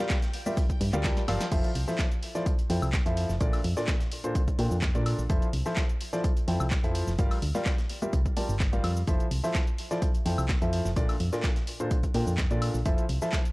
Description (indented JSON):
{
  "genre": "piano house",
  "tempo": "127 BPM",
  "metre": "4/4",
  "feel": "straight",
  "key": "F major",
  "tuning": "A4 = 440 Hz",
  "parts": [
    { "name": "string machine, violins", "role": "sustained chords", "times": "0.0-1.5 s", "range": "G5", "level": "-48 LUFS", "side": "equal", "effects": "none" },
    { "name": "warm concert grand piano", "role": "riff", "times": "0.0-13.4 s", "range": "Bb2 to A5", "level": "-31 LUFS", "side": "equal", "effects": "sidechain pumping, tape echo" },
    { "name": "breakbeat sampler-style drum kit", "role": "drums", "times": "0.1-13.4 s", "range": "hi-hat, snare drum", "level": "-43 LUFS", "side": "equal", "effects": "high-pass filter on hats, high-pass filter on snare" },
    { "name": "electronic kick drum", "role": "drums", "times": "0.1-13.4 s", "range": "none", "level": "-27 LUFS", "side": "equal", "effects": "none" },
    { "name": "punchy analog drum machine", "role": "drums", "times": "0.1-13.5 s", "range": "crash cymbal, handclaps, hi-hat, shaker, snare drum, woodblock", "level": "-37 LUFS", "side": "equal", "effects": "none" },
    { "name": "solid FM bass", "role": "bass", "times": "0.8-13.2 s", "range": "F1 to Bb2", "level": "-28 LUFS", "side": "equal", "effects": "sidechain pumping" }
  ],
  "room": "digital ambience",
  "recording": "dry, gritty hardware recording, cassette tape",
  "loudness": "-25 LUFS",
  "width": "side -22 dB against mid",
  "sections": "0.0-1.5 A section; 1.5-13.5 B section",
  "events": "drop 0.0-1.5; drum fill 1.2-1.5",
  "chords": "0.0 Gm7; 1.5 Fmaj7; 3.4 Bbmaj7; 5.3 Fmaj7; 7.2 Gm7; 9.1 Fmaj7; 11.0 Bbmaj7; 12.9 Fmaj7"
}